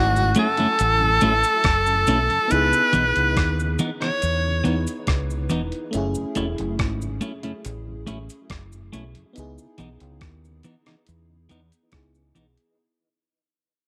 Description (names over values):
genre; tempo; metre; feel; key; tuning
lovers rock reggae; 70 BPM; 4/4; straight; unclear; A4 = 440 Hz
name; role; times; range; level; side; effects
edgy tenor saxophone; melody; 0.0-4.8 s; F#4 to C#5; -22 LUFS; equal; tape echo
FM electric piano with soft pad layer; accompaniment; 0.0-12.8 s; A3 to G#5; -33 LUFS; equal; chorus
deep dub fingered electric bass; bass; 0.0-12.6 s; E1 to E2; -28 LUFS; equal; none
mellow tonewheel organ; accompaniment; 0.2-12.5 s; F#2 to E4; -40 LUFS; equal; none
cabasa; percussion; 0.2-12.6 s; none; -41 LUFS; equal; none
crisp 8-bit digital drum machine; drums; 0.3-12.8 s; hi-hat, kick drum, rim click; -28 LUFS; equal; none
clean electric guitar; stabs; 0.4-12.5 s; E3 to E4; -27 LUFS; equal; none
room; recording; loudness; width
moderate spring reverb, RT60 2.4 s; none; -21 LUFS; mono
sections
0.0-12.8 A section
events
fade-out 0.0-12.8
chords
0.0 F#m7; 2.5 C#m9; 5.9 F#m7; 9.4 C#m9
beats
0.79 1.65 | 2.51 3.36 4.22 5.08 | 5.93 6.79 7.65 8.50 | 9.36 10.21 11.07 11.93